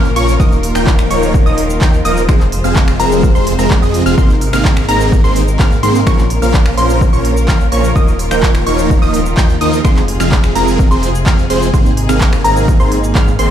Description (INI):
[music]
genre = EDM, festival progressive house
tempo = 127 BPM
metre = 4/4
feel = straight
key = Ab major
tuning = A4 = 438 Hz
[part]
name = muted studio string section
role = sustained chords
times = 0.0-13.5 s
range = C3 to C5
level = -21 LUFS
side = left 1 dB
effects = sidechain pumping
[part]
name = wide unison pluck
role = arpeggios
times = 0.0-13.5 s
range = Bb5 to G6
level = -20 LUFS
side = equal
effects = sidechain pumping, dub echo
[part]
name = supersaw chords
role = riff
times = 0.0-13.5 s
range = Eb3 to G5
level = -16 LUFS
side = right 1 dB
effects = phaser, sidechain pumping, dub echo
[part]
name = detuned saw bass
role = bass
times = 0.0-13.5 s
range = Eb1 to Ab2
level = -17 LUFS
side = equal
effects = sidechain pumping
[part]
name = big-room dance drum kit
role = drums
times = 0.0-13.5 s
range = cabasa, finger snaps, handclaps, hi-hat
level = -22 LUFS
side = equal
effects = none
[part]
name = electronic kick drum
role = drums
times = 0.4-13.2 s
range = none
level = -11 LUFS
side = equal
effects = none
[sound]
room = light reverb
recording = played on a big sound system in a bare room, large studio reverb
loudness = -9 LUFS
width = side -10 dB against mid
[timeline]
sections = 0.0-13.5 A section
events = none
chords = 0.4 Ebsus2; 2.3 Fm; 4.2 Abadd9; 6.1 Bbm; 8.0 Ebsus2; 9.8 Fm; 11.7 Abadd9